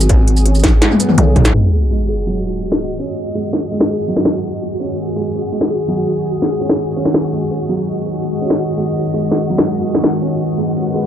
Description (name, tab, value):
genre	half-time drum and bass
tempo	166 BPM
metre	4/4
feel	half-time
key	G# minor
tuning	A4 = 440 Hz
part	felt-muted upright piano	arpeggios	0.0-11.1 s	F#3 to G#4	-21 LUFS	right 2 dB	low-pass filter, tape echo
part	growling 808-style bass	bass	0.0-1.5 s	G#1 to B1	-13 LUFS	equal	none
part	industrial drum kit	drums	0.0-10.1 s	hi-hat, shaker, snare drum, toms	-16 LUFS	left 1 dB	none
part	flickering grainy texture	texture	0.0-11.1 s	F#4 to G#4	-25 LUFS	equal	built-in reverb
part	electronic kick drum	drums	0.1-1.4 s	none	-13 LUFS	equal	distortion
part	bowed-like drone	sustained chords	2.4-11.1 s	D#3 to D#5	-21 LUFS	left 1 dB	built-in reverb, sidechain pumping
part	sub drop	sound effects	1.5-3.0 s	none	-17 LUFS	equal	none
room	moderate plate reverb, RT60 1.5 s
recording	echo-heavy mix, low-pass filter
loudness	-14 LUFS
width	side -10 dB against mid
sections	0.0-1.5 A section; 1.5-11.1 B section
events	drum fill 0.8-1.5; impact 1.5-3.0; filter sweep on synth drone 1.5-11.1; filter sweep on felt piano 1.5-11.1; filter sweep 1.5-11.1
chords	0.0 G#5